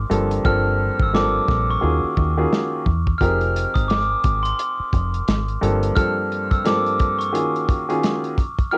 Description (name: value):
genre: hip hop, boom-bap hip-hop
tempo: 87 BPM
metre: 4/4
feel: swing 59% on 16ths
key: unclear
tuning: A4 = 439 Hz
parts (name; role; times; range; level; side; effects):
- dark upright piano; accompaniment; 0.0-8.8 s; G2 to Bb4; -26 LUFS; equal; high-pass filter, low-pass filter
- deep dub fingered electric bass; bass; 0.0-5.9 s; F1 to E2; -25 LUFS; equal; tube saturation
- warm soul drum kit; drums; 0.1-8.7 s; hi-hat, kick drum, snare drum; -24 LUFS; equal; cassette tape
- glockenspiel with soft plastic mallets; melody; 0.5-8.8 s; C6 to F6; -26 LUFS; equal; high-pass filter, low-pass filter, cassette tape, tape echo
room: little or no reverb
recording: home recording on cassette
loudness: -20 LUFS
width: mono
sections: 0.0-8.8 A section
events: hi-hats muted 0.4-3.2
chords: 0.1 Gm11; 1.8 Ebm11; 3.2 Fm11; 5.6 Gm11; 7.3 Ebm11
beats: | 0.45 1.14 1.83 2.52 | 3.21 3.90 4.59 5.28 | 5.97 6.66 7.34 8.04 | 8.72